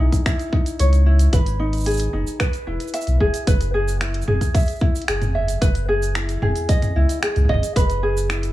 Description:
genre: folktronica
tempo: 112 BPM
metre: 4/4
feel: straight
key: unclear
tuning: A4 = 440 Hz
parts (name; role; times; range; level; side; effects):
- ukulele; arpeggios; 0.0-8.5 s; D#4 to E5; -24 LUFS; equal; digital delay
- warm sub bass; bass; 0.0-8.5 s; E1 to C#2; -19 LUFS; equal; none
- electronic kick drum; drums; 0.1-7.9 s; none; -19 LUFS; equal; none
- organic electronic drum kit; drums; 0.1-8.5 s; cabasa, finger snaps, hi-hat, toms; -26 LUFS; equal; none
room: little or no reverb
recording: small room ambience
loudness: -17 LUFS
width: side -15 dB against mid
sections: 0.0-3.5 A section; 3.5-8.5 B section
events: none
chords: 0.0 C#madd9; 1.3 G#m; 2.4 E; 3.5 F#9sus4; 5.6 Emaj7; 7.8 F#9sus4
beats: 0.26 0.80 | 1.33 1.87 2.40 2.94 | 3.48 4.01 4.55 5.08 | 5.62 6.15 6.69 7.22 | 7.76 8.30

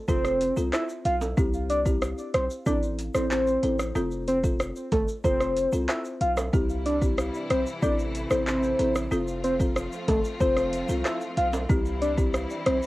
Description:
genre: dancehall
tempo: 93 BPM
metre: 4/4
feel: straight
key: unclear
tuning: A4 = 440 Hz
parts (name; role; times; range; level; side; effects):
- soft octave-layered synth lead; melody; 0.1-12.8 s; A4 to F5; -27 LUFS; equal; chorus, phaser, analog delay
- folk marimba with soft mallets; accompaniment; 0.1-12.4 s; C4 to A4; -31 LUFS; left 1 dB; cassette tape
- hard-hitting 808-style bass; bass; 0.1-12.8 s; F1 to C2; -31 LUFS; equal; none
- afro-pop drum kit; drums; 0.1-12.9 s; handclaps, hi-hat, kick drum, rim click, shaker; -27 LUFS; equal; overdrive, cassette tape
- tube shaker and timbales; percussion; 0.1-12.9 s; none; -38 LUFS; right 3 dB; none
- warm studio string section; sustained chords; 6.5-12.9 s; C3 to F4; -36 LUFS; left 1 dB; sidechain pumping, cassette tape
room: little or no reverb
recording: home recording on cassette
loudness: -23 LUFS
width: side -18 dB against mid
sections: 0.0-12.9 A section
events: none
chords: 0.0 F; 1.4 C; 2.7 Am; 4.0 F; 6.5 C; 7.8 Am; 9.1 F; 11.7 C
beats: 0.08 0.73 | 1.37 2.02 2.66 3.31 | 3.95 4.60 5.25 5.89 | 6.54 7.18 7.83 8.47 | 9.12 9.76 10.41 11.05 | 11.70 12.34

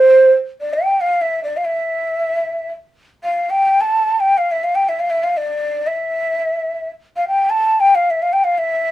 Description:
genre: persian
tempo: free time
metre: none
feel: none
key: unclear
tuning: A4 = 440 Hz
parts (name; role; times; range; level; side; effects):
- breathy mellow ney; solo; 0.0-8.9 s; C5 to A5; -14 LUFS; equal; none
room: light reverb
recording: band playing live in one room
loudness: -15 LUFS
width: side -14 dB against mid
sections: 0.4-8.9 A section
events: none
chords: none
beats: free time

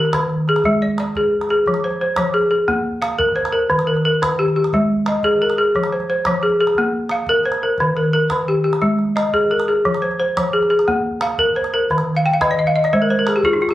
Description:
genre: west african traditional, West African string and xylophone music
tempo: 117 BPM (dotted quarters)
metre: 12/8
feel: straight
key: F dorian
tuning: A4 = 440 Hz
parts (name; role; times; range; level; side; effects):
- balafon; arpeggios; 0.0-13.7 s; Eb3 to G5; -15 LUFS; equal; none
- calabash; percussion; 0.0-13.7 s; none; -28 LUFS; right 2 dB; none
room: light reverb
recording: recorded on a phone in the room, club reverb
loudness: -15 LUFS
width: side -14 dB against mid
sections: 0.0-1.7 A section; 1.7-13.7 B section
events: balafon fill 12.2-13.7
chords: 0.0 Eb; 0.7 N.C.; 1.7 Fm; 2.7 Bb5; 3.7 Eb; 4.7 Ab5; 5.7 Fm; 6.8 Bb5; 7.8 Eb; 8.8 Ab5; 9.8 Fm; 10.9 Bb5; 11.9 Eb5; 12.9 N.C.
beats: 0.15 0.66 1.16 | 1.67 2.18 2.69 3.19 | 3.70 4.21 4.72 5.23 | 5.75 6.26 6.77 7.28 | 7.79 8.31 8.82 9.33 | 9.85 10.36 10.87 11.38 | 11.90 12.41 12.93 13.44

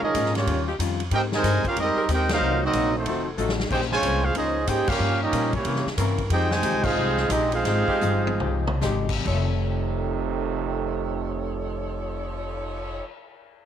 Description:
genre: jazz, big band swing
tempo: 130-185 BPM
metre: 4/4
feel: swing 64% on 8ths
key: F minor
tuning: A4 = 440 Hz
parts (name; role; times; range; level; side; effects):
- clear trumpet section; melody; 0.0-8.8 s; A3 to Ab5; -24 LUFS; equal; none
- clear trombone section; second line; 0.0-13.0 s; F2 to G4; -29 LUFS; right 9 dB; none
- archtop guitar, miked and amplified; accompaniment; 0.0-13.1 s; F2 to C5; -32 LUFS; left 12 dB; none
- warm saxophone section; sustained chords; 0.0-13.0 s; E3 to Db5; -34 LUFS; equal; none
- upright bass; bass; 0.0-13.0 s; F1 to C3; -27 LUFS; left 1 dB; none
- swinging big-band drum kit; drums; 0.1-12.9 s; crash cymbal, cymbal swell, hi-hat, kick drum, ride cymbal, snare drum, toms; -31 LUFS; left 1 dB; none
room: light reverb, small room ambience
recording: 1960s-style stereo with parts hard left and right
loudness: -22 LUFS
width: side -9 dB against mid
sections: 0.0-9.3 A section; 9.3-13.0 B section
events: band accent 2.2, 4.8, 6.8; drum fill 3.4-3.7, 8.0-8.8; slowing down 6.3-9.3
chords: 0.5 Eb9; 1.1 Abmaj9; 2.4 Cm7b5; 3.1 F7b9; 3.7 Bbm9; 5.0 Gm7b5; 5.6 C7b9; 6.3 Fm9; 9.3 F7b13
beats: 0.14 0.47 0.79 | 1.11 1.44 1.76 2.09 | 2.41 2.73 3.06 3.38 | 3.71 4.03 4.35 4.68 | 5.00 5.33 5.65 5.97 | 6.30 6.62 6.95 7.29 | 7.64 8.01 8.40 8.81 | 9.26 9.72 10.18 10.65 | 11.11 11.57 12.03 12.49

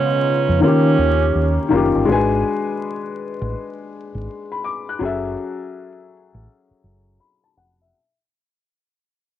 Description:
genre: lo-fi hip hop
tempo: 82 BPM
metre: 4/4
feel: swing 65% on 16ths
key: F# minor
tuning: A4 = 440 Hz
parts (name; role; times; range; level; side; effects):
- breathy tenor saxophone; melody; 0.0-1.7 s; C#4; -20 LUFS; right 7 dB; low-pass filter, cassette tape, tape echo
- felt-muted upright piano; accompaniment; 0.0-8.2 s; C#3 to F#6; -20 LUFS; left 4 dB; cassette tape, low-pass filter
- dark analog pad; sustained chords; 0.0-2.1 s; C#3 to G4; -28 LUFS; left 1 dB; wide subtle chorus, low-pass filter
- deep dub fingered electric bass; bass; 0.5-7.9 s; E#1 to D#3; -20 LUFS; equal; none
room: moderate booth ambience, RT60 0.2 s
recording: home recording on cassette, vinyl crackle, low-pass filter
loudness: -16 LUFS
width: side -11 dB against mid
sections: 0.0-2.1 A section; 2.1-7.9 B section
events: fade-out 2.1-7.9; filter sweep 2.1-7.9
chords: 0.0 C#7; 0.6 D#7; 2.1 G#m7b5; 5.0 F#m9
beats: 0.61 1.34 | 2.08 2.81 3.54 4.27 | 5.00 5.74 6.47 7.20

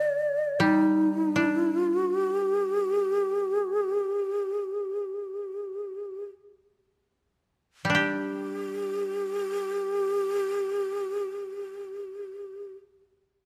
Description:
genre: japanese traditional, Japanese chamber music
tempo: free time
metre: none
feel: none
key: unclear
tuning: A4 = 441 Hz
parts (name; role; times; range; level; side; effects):
- breathy mellow shakuhachi; melody; 0.0-12.7 s; G4 to D5; -29 LUFS; equal; none
- koto; accompaniment; 0.0-12.8 s; D3 to G4; -31 LUFS; equal; none
room: light reverb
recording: close, detailed microphones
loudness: -28 LUFS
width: mono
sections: 0.0-8.0 A section; 8.0-13.5 B section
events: slowing down 0.0-8.0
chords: none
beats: free time

